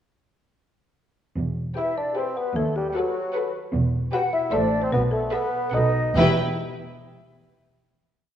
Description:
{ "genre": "cinematic, playful, whimsical film cue", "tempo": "150 BPM", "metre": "3/4", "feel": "uneven beats", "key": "E minor", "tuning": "A4 = 439 Hz", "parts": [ { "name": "dark studio double bass section", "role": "bass", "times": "1.4-6.4 s", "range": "E1 to D#2", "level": "-27 LUFS", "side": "right 2 dB", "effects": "none" }, { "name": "warm studio cello section", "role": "bass", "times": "1.4-6.4 s", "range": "D#2 to B2", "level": "-27 LUFS", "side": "right 2 dB", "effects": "none" }, { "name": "folk marimba with medium hard mallets", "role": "melody", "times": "1.8-6.4 s", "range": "F#4 to F#5", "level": "-29 LUFS", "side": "left 4 dB", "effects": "none" }, { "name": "rich studio violin section", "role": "melody", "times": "1.8-6.4 s", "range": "E5 to G5", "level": "-36 LUFS", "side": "left 1 dB", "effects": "none" }, { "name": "large flute ensemble", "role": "second line", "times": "1.8-6.4 s", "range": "F#4 to F#5", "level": "-32 LUFS", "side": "equal", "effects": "none" }, { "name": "rich studio violin section", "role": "second line", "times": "1.8-6.4 s", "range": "B4 to C5", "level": "-32 LUFS", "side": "left 2 dB", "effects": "none" }, { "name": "clear bassoon", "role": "accompaniment", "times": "1.8-6.3 s", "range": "F#3 to F#4", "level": "-28 LUFS", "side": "equal", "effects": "none" }, { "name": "warm studio viola section", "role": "accompaniment", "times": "1.8-6.4 s", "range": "E4 to A4", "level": "-32 LUFS", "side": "right 2 dB", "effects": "none" }, { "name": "warm French horn section", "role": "sustained chords", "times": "1.8-6.3 s", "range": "B3 to C5", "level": "-32 LUFS", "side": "left 3 dB", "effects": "none" } ], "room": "wet scoring stage reverb, RT60 1.6 s", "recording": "worn, warbling old tape, cassette tape, warbly pitch drift", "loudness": "-21 LUFS", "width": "side -10 dB against mid", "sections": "1.4-6.2 A section; 6.2-7.4 final chord", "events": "none", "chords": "1.4 Em; 2.6 B7/D#; 3.7 Em; 4.5 Am; 4.9 B7sus4; 5.7 B7; 6.2 Em" }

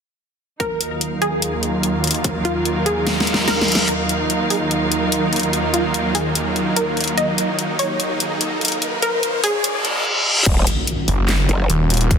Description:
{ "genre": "heavy wobble dubstep", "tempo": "146 BPM", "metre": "4/4", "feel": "half-time", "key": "Eb minor", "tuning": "A4 = 441 Hz", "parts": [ { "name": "wide unison pluck", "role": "melody", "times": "0.6-10.0 s", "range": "F4 to Eb5", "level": "-23 LUFS", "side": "equal", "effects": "ping-pong delay" }, { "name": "supersaw chords", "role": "sustained chords", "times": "0.6-12.2 s", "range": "Eb2 to Gb4", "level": "-24 LUFS", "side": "equal", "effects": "sidechain pumping, low-pass filter" }, { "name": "dubstep drum kit", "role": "drums", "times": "0.6-12.2 s", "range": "crash cymbal, handclaps, hi-hat, snare drum", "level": "-21 LUFS", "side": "left 2 dB", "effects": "none" }, { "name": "electronic kick drum", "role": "drums", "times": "0.6-2.3, 10.5-12.2 s", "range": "none", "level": "-20 LUFS", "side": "equal", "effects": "overdrive, high-pass filter on kick, high-pass filter on room" }, { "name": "dark studio string section", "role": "texture", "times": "0.6-10.1 s", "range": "Gb3 to F5", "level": "-24 LUFS", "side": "right 2 dB", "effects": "sidechain pumping" }, { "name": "reverse cymbal, riser and impact", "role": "sound effects", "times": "3.3-12.1 s", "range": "none", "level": "-23 LUFS", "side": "left 1 dB", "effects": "none" }, { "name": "growl bass", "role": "bass", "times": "10.5-11.7 s", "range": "Eb1 to Gb1", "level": "-18 LUFS", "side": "equal", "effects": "chorus, overdrive" }, { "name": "snarling distorted saw bass", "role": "bass", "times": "11.1-12.2 s", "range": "Eb1 to Gb1", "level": "-17 LUFS", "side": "equal", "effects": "distortion, overdrive" } ], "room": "moderate lush hall reverb, RT60 2.0 s", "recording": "dense, heavily limited modern master, high-pass filter", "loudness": "-16 LUFS", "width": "side -7 dB against mid", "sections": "0.6-3.9 A section; 3.9-10.5 B section; 10.5-12.2 C section", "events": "filter sweep on supersaw synth 0.6-3.9; drum fill 3.1-3.9; reverse cymbal 3.3-3.9, 9.6-10.5; build-up 3.9-10.5; riser 3.9-10.1; filter sweep on synth pluck 3.9-10.5; filter sweep 3.9-10.5; drop 10.5-12.2; impact 10.5-12.1", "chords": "0.6 Ebmadd9; 10.5 Ebm7" }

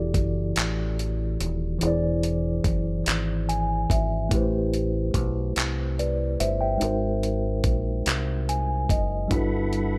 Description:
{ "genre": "slow six-eight R&B", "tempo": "48 BPM (dotted quarters)", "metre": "6/8", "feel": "straight", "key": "unclear", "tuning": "A4 = 439 Hz", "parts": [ { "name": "mellow tine electric piano", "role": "accompaniment", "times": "0.0-10.0 s", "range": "E3 to G#5", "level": "-29 LUFS", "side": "equal", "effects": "none" }, { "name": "deep dub fingered electric bass", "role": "bass", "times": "0.0-10.0 s", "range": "D#1 to C2", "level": "-30 LUFS", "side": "equal", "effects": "none" }, { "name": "dusty soul sampler-style drum kit", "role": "drums", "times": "0.1-9.9 s", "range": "handclaps, hi-hat, kick drum", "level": "-29 LUFS", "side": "equal", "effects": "overdrive" }, { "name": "tonewheel organ", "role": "sustained chords", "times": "9.3-10.0 s", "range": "A4 to B5", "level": "-37 LUFS", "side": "equal", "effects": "chorus vibrato, stopped rotary speaker" } ], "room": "light reverb", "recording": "none", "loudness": "-25 LUFS", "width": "mono", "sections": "0.0-10.0 A section", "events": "tine electric piano fill 3.1-4.3, 8.1-9.3", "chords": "0.0 Em11; 1.8 E7b13; 4.3 Am9; 6.8 G#9; 9.3 Gmaj13" }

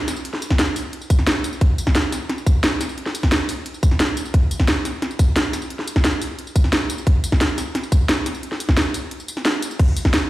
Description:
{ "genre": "drum and bass", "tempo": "176 BPM", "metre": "4/4", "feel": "straight", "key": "none", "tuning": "none", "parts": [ { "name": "drum and bass drum kit", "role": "drums", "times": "0.1-10.2 s", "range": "crash cymbal, hi-hat, snare drum, tambourine", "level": "-21 LUFS", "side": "equal", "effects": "overdrive" }, { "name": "electronic kick drum", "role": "drums", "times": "0.5-10.1 s", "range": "none", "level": "-16 LUFS", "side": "equal", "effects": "none" } ], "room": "moderate digital room reverb, RT60 1.1 s", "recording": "played on a big sound system in a bare room, stone room reverb", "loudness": "-18 LUFS", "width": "side -16 dB against mid", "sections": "0.0-10.3 A section", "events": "break 9.1-9.8", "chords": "none" }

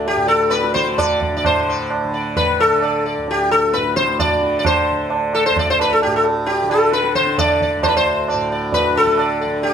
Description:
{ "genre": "indian classical, Hindustani", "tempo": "132 BPM", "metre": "7/4", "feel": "straight", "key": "D raga khamaj", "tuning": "A4 = 441 Hz", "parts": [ { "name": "sitar", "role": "melody", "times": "0.0-9.7 s", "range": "G4 to D5", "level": "-16 LUFS", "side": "left 2 dB", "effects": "none" }, { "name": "tanpura", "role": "drone", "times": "0.0-9.7 s", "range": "D2 to D3", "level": "-24 LUFS", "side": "right 1 dB", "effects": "none" }, { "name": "tabla", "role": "percussion", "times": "0.1-9.7 s", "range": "none", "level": "-22 LUFS", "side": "right 5 dB", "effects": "none" } ], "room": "light reverb", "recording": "close, detailed microphones", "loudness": "-15 LUFS", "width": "side -8 dB against mid", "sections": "0.0-1.5 A section; 1.5-9.7 B section", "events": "speeding up 0.0-9.7", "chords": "none" }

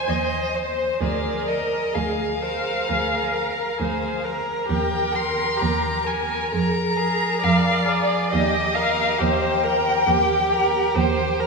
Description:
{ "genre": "classical, slow romantic movement for string quartet", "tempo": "64-69 BPM", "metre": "4/4", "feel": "rubato", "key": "Eb major", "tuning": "A4 = 442 Hz", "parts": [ { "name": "warm violin", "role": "melody", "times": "0.0-11.4 s", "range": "C5 to C6", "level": "-24 LUFS", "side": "left 2 dB", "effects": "none" }, { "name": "rich violin", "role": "second line", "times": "0.0-11.5 s", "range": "G4 to Eb5", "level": "-27 LUFS", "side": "equal", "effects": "none" }, { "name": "clear viola", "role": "accompaniment", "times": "0.0-11.5 s", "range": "G4 to Eb5", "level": "-26 LUFS", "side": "right 3 dB", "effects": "none" }, { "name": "rich cello", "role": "bass", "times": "0.1-11.5 s", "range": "D2 to F2", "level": "-26 LUFS", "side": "right 2 dB", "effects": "none" } ], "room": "wet church reverb, RT60 3.3 s", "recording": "small room ambience", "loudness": "-19 LUFS", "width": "side -3 dB against mid", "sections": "0.0-11.5 A section", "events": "none", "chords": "0.0 Ab/Eb (rootless); 1.0 Bb7/D; 4.7 Eb; 6.5 Bb7/F; 8.3 Eb" }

